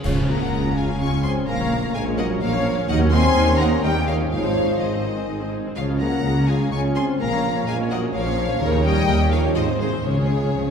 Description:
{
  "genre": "cinematic, playful, whimsical film cue",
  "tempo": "126 BPM",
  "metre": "3/4",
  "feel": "straight",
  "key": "Db major",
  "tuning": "A4 = 441 Hz",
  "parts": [
    { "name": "clear chamber violin section", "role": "melody", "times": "0.0-10.7 s", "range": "C5 to Db6", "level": "-28 LUFS", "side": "left 3 dB", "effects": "none" },
    { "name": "rich chamber viola section", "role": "accompaniment", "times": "0.0-10.6 s", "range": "F3 to Db5", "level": "-29 LUFS", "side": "right 2 dB", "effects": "none" },
    { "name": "mellow French horn section", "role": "sustained chords", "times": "0.0-10.7 s", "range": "C3 to Db4", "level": "-26 LUFS", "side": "left 2 dB", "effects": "none" },
    { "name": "concert harp", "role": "arpeggios", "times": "0.0-10.7 s", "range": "Ab2 to Bb5", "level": "-29 LUFS", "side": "left 4 dB", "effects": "none" },
    { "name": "mellow tuba", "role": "bass", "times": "0.0-10.7 s", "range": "Ab1 to Eb2", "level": "-27 LUFS", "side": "right 2 dB", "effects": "none" },
    { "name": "rich chamber double bass section", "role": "bass", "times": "0.0-10.7 s", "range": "Ab1 to Eb2", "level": "-26 LUFS", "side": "right 2 dB", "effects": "none" },
    { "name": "warm studio cello section", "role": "bass", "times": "0.0-10.7 s", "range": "Eb2 to Db3", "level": "-26 LUFS", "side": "right 1 dB", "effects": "none" },
    { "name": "clash cymbals and concert bass drum", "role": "percussion", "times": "0.0-1.0 s", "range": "none", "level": "-30 LUFS", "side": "equal", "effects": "none" },
    { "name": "clear studio violin section", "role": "second line", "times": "0.1-10.7 s", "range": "Ab4 to Ab5", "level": "-29 LUFS", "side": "left 1 dB", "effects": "none" }
  ],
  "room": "wet scoring stage reverb, RT60 1.9 s",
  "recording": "heard from further back in the room",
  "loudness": "-18 LUFS",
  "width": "side -7 dB against mid",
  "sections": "0.0-10.7 A section",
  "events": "band accent 0.0-0.5",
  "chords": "0.0 Db; 1.5 Bbm; 2.9 Eb5; 3.8 Eb7; 4.3 Ab; 5.8 Db; 7.2 Bbm; 8.6 Ebm7; 9.1 Eb7; 9.6 Ab; 10.0 Db",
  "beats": "| 0.05 0.52 1.00 | 1.48 1.95 2.42 | 2.89 3.37 3.84 | 4.32 4.80 5.29 | 5.77 6.24 6.72 | 7.20 7.67 8.14 | 8.61 9.08 9.56 | 10.05 10.54"
}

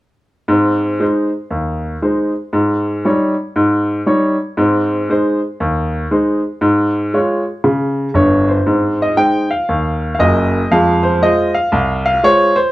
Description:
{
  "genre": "jazz, stride piano",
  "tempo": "118 BPM",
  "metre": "4/4",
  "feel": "swing 64% on 8ths",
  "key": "Ab major",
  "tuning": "A4 = 439 Hz",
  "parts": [
    { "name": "bright upright piano", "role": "solo", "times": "0.5-12.7 s", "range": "Gb1 to G5", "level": "-13 LUFS", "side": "equal", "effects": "none" }
  ],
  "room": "light reverb",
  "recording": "dark, warm production",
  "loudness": "-13 LUFS",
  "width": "side -17 dB against mid",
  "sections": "0.5-8.7 A section; 8.7-12.7 B section",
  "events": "none",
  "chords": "0.5 Ab; 2.5 Eb7/Ab; 4.6 Ab; 6.6 Db/Ab; 8.7 Ab; 10.7 Fm",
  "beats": "| 0.50 1.01 1.52 2.03 | 2.54 3.05 3.56 4.08 | 4.59 5.10 5.61 6.12 | 6.63 7.14 7.65 8.16 | 8.67 9.18 9.69 10.20 | 10.71 11.22 11.73 12.24"
}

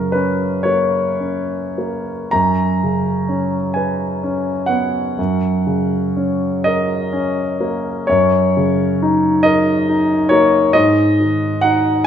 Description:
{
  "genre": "classical, romantic nocturne for solo piano",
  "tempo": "34-46 BPM (dotted quarters)",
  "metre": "12/8",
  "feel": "rubato",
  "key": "F# major",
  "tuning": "A4 = 440 Hz",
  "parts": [
    { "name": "warm grand piano", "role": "solo", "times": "0.0-12.1 s", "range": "F#2 to A#5", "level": "-14 LUFS", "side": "equal", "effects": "none" }
  ],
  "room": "wet recital hall reverb, RT60 1.5 s",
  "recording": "minimal, uncompressed stereo recording",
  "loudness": "-14 LUFS",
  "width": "side -9 dB against mid",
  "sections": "0.0-12.1 A section",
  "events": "none",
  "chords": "0.0 F#; 2.3 C#5/F#; 5.2 F#; 10.7 G#5",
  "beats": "0.64 2.33 3.75 | 5.18 6.64 8.07 9.44 | 10.74 12.06"
}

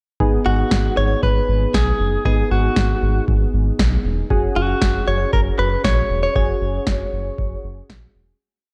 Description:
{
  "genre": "synth-pop",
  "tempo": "117 BPM",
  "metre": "4/4",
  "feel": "straight",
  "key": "unclear",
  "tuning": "A4 = 440 Hz",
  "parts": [
    { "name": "warm analog keys", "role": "accompaniment", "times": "0.2-8.4 s", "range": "B3 to G#4", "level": "-28 LUFS", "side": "equal", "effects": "chorus" },
    { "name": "round analog bass", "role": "bass", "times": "0.2-8.3 s", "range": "E1 to B1", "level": "-23 LUFS", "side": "equal", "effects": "none" },
    { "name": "electro analog drum machine", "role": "drums", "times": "0.2-8.0 s", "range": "kick drum, snare drum", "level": "-23 LUFS", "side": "equal", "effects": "none" },
    { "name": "direct-recorded clean electric guitar", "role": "melody", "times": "0.5-8.1 s", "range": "F#4 to C#5", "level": "-24 LUFS", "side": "equal", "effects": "spring reverb, slapback echo" }
  ],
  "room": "light reverb",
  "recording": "dark, warm production",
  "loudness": "-19 LUFS",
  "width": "mono",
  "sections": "0.2-8.4 verse",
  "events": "fade-out 6.4-8.4",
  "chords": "0.2 G#m7; 4.3 F#sus2",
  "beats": "| 0.20 0.71 1.23 1.74 | 2.25 2.77 3.28 3.79 | 4.30 4.82 5.33 5.84 | 6.36 6.87 7.38 7.89"
}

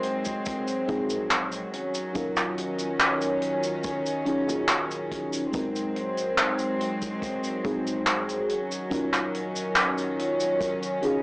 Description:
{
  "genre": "vaporwave",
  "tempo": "71 BPM",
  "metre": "4/4",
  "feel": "straight",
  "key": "Eb dorian",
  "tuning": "A4 = 440 Hz",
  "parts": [
    { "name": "FM electric piano with soft pad layer", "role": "accompaniment", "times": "0.0-11.2 s", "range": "Gb3 to Bb4", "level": "-30 LUFS", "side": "equal", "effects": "tremolo, analog chorus, tape echo" },
    { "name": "dark studio string section", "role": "sustained chords", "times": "0.0-11.2 s", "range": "Eb3 to Db4", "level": "-29 LUFS", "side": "equal", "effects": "none" },
    { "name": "slap-like FM bass", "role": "bass", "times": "0.0-10.5 s", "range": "Eb1 to Bb1", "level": "-47 LUFS", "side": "equal", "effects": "tube saturation" },
    { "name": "vintage drum kit", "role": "drums", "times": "0.0-11.2 s", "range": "cabasa, handclaps, hi-hat", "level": "-26 LUFS", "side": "equal", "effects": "cassette tape" },
    { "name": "kick drum", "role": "drums", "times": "0.3-10.8 s", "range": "none", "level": "-39 LUFS", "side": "equal", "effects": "cassette tape" }
  ],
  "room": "moderate studio reverb, RT60 0.6 s",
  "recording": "home recording on cassette, small speaker sound",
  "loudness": "-24 LUFS",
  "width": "side -25 dB against mid",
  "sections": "0.0-11.2 A section",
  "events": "none",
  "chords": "0.0 Ab7/Eb; 1.7 Ebm7; 5.5 Ab7/Eb; 8.5 Ebm7",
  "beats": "0.46 1.31 | 2.15 3.00 3.84 4.69 | 5.53 6.38 7.22 8.07 | 8.91 9.76 10.61"
}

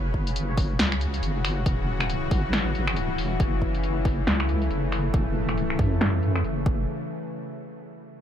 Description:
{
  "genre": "deep dubstep",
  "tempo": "138 BPM",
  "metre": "4/4",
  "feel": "swing 59% on 16ths, half-time",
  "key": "F# minor",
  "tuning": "A4 = 440 Hz",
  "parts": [
    { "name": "bowed-like drone", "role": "sustained chords", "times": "0.0-6.9 s", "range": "C#3 to F#4", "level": "-29 LUFS", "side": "left 2 dB", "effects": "built-in reverb" },
    { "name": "deep soft wobble bass", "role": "bass", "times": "0.0-6.9 s", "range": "E1 to F#2", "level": "-26 LUFS", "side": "equal", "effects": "chorus" },
    { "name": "electronic kick drum", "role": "drums", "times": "0.1-6.8 s", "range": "none", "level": "-25 LUFS", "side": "equal", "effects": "overdrive" },
    { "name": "deep house drum kit", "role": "drums", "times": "0.3-6.5 s", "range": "finger snaps, hi-hat, snare drum", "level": "-28 LUFS", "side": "equal", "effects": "overdrive, low-pass filter on hats, low-pass filter on snare, low-pass filter on room" }
  ],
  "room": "digital ambience",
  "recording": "none",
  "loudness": "-23 LUFS",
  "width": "side -9 dB against mid",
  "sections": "0.0-6.9 A section; 6.9-8.2 B section",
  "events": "filter sweep on drum 0.0-6.9",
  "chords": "0.0 F#5; 6.9 N.C.",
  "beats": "0.36 0.79 1.23 | 1.66 2.10 2.53 2.96 | 3.40 3.83 4.27 4.70 | 5.14 5.57 6.01 6.44"
}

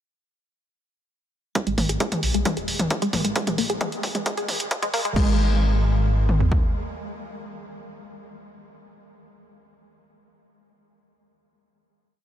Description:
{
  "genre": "driving peak-time techno",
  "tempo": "133 BPM",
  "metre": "4/4",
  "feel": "straight",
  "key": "unclear",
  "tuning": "A4 = 440 Hz",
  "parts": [
    { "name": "tight sequenced synth", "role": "riff", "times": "1.6-5.4 s", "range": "G#3 to G#4", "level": "-27 LUFS", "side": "equal", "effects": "chorus, tube saturation, sidechain pumping, diffuse ambient delay" },
    { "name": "punchy analog drum machine", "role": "drums", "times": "1.6-6.6 s", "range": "kick drum, toms", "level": "-24 LUFS", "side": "equal", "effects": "high-pass filter on kick, studio reverb, high-pass filter on toms" },
    { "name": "punchy analog drum machine", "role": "drums", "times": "1.6-5.3 s", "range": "crash cymbal, hi-hat, toms", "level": "-28 LUFS", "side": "equal", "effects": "sidechain pumping on hats, studio reverb, sidechain pumping on toms, sidechain pumping on cymbals" },
    { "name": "dark detuned saw bass", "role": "bass", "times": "1.7-6.5 s", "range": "D#1 to A#1", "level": "-23 LUFS", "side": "equal", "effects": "sidechain pumping" }
  ],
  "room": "moderate huge ambient reverb, RT60 7.5 s",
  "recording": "dreamy mix soaked in reverb, high-pass filter",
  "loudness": "-20 LUFS",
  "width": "side -10 dB against mid",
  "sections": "1.6-5.2 build; 5.2-8.8 final chord",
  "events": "build-up 1.6-5.2; filter sweep on synth arpeggio sound 1.6-5.2; filter sweep 1.6-5.2",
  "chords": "1.6 G#5; 5.2 N.C.",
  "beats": "| 1.55 2.00 2.46 2.91 | 3.36 3.81 4.26 4.71 | 5.16 5.61 6.06 6.51"
}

